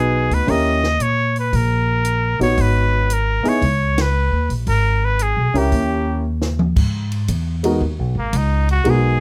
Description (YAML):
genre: jazz, small-group swing and bop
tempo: 115 BPM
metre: 4/4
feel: swing 68% on 8ths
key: G# minor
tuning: A4 = 440 Hz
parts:
  - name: trumpet with straight mute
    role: melody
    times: 0.0-9.2 s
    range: A#3 to D#5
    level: -23 LUFS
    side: equal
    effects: none
  - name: clear grand piano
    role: accompaniment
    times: 0.0-9.2 s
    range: G#3 to C#5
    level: -22 LUFS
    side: equal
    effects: none
  - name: upright bass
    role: bass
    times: 0.0-9.2 s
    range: G#1 to A#2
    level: -21 LUFS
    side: equal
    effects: none
  - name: compact cocktail drum kit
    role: drums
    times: 0.3-9.0 s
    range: crash cymbal, hi-hat, kick drum, ride cymbal, snare drum, toms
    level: -26 LUFS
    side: equal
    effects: none
room: little or no reverb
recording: close, detailed microphones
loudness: -18 LUFS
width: mono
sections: 0.0-6.8 A section; 6.8-9.2 B section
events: band accent 3.9; drum fill 6.2-6.8; muted trumpet solo 6.8-9.2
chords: 0.5 D#7b9; 2.6 G#m7; 3.6 C#sus2; 4.7 G#madd9; 5.7 D#7b9; 6.8 G#m9